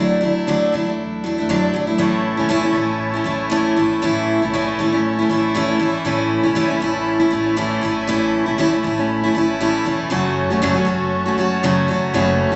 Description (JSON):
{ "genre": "acoustic pop", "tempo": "118 BPM", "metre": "4/4", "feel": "swing 55% on 16ths", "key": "A major", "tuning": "A4 = 440 Hz", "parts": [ { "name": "picked steel-string acoustic guitar", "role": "accompaniment", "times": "0.0-12.6 s", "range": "F#2 to F#4", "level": "-19 LUFS", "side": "equal", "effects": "none" }, { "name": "upright bass", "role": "bass", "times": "0.0-12.6 s", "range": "E1 to F#2", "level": "-35 LUFS", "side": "equal", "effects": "none" }, { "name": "musette accordion", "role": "sustained chords", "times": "2.0-12.6 s", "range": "E4 to C#6", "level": "-26 LUFS", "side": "equal", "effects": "none" } ], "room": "wet large studio reverb, RT60 1.4 s", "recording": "nothing above 8.0 kHz", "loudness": "-19 LUFS", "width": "mono", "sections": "0.0-2.0 A section; 2.0-12.6 B section", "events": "none", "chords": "0.0 Dadd9; 2.0 A; 10.1 F#m" }